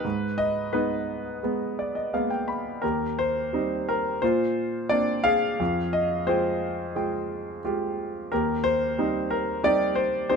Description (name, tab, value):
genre	classical, lyrical solo piano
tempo	88 BPM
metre	4/4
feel	rubato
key	Eb major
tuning	A4 = 440 Hz
part	clear concert grand piano	solo	0.0-10.4 s	Eb2 to Cb6	-24 LUFS	equal	none
room	light reverb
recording	close, detailed microphones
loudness	-24 LUFS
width	side -5 dB against mid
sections	0.0-10.4 A section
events	grand piano fill 1.4-2.8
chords	0.0 Abmadd9; 2.8 Eb6; 4.2 Bbadd9; 5.6 Fmadd9; 8.3 Eb6